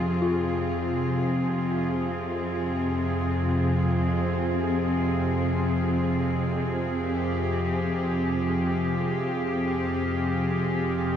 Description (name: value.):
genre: dark ambient drone.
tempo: free time.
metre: none.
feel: none.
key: F minor.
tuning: A4 = 440 Hz.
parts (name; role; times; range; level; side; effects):
clear chamber cello section; sustained chords; 0.0-11.2 s; F3 to Ab4; -26 LUFS; equal; none.
dark detuned synth bell; arpeggios; 0.0-11.2 s; Eb4 to Bb4; -35 LUFS; left 4 dB; chorus, diffuse ambient delay.
bowed-like drone; drone; 0.0-11.2 s; F2 to C3; -27 LUFS; equal; built-in reverb, phaser.
bubbling stepped-filter texture; texture; 4.7-11.2 s; F4 to F5; -43 LUFS; left 1 dB; none.
room: wet huge ambient reverb, RT60 8.0 s.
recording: dark, warm production.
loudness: -24 LUFS.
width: side -9 dB against mid.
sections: 0.0-4.1 A section; 4.1-11.2 B section.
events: none.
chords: 0.0 Fm; 4.1 Fmadd9.